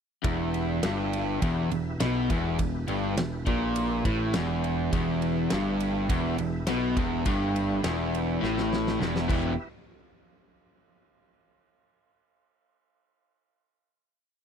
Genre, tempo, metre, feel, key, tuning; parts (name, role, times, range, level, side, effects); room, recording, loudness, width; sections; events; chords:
classic rock; 103 BPM; 4/4; straight; E minor; A4 = 440 Hz
tonewheel organ; sustained chords; 0.2-9.7 s; E4 to E5; -41 LUFS; equal; slow rotary speaker, overdrive, chorus vibrato
cranked stack guitar; riff; 0.2-9.5 s; E2 to E3; -33 LUFS; equal; overdrive
crunchy overdriven guitar; riff; 0.2-9.5 s; E2 to E3; -31 LUFS; left 10 dB
overdriven electric guitar; riff; 0.2-9.5 s; E2 to G4; -31 LUFS; right 10 dB
modern bright picked electric bass; bass; 0.2-9.6 s; E1 to B1; -33 LUFS; equal
huge arena drum kit; drums; 0.2-9.4 s; crash cymbal, kick drum, ride cymbal, snare drum; -32 LUFS; equal
light reverb; dry, close 1970s-style studio recording; -25 LUFS; side -7 dB against mid
0.3-9.6 riff; 9.6-11.9 final hit
drum fill 8.4-9.6
0.3 Em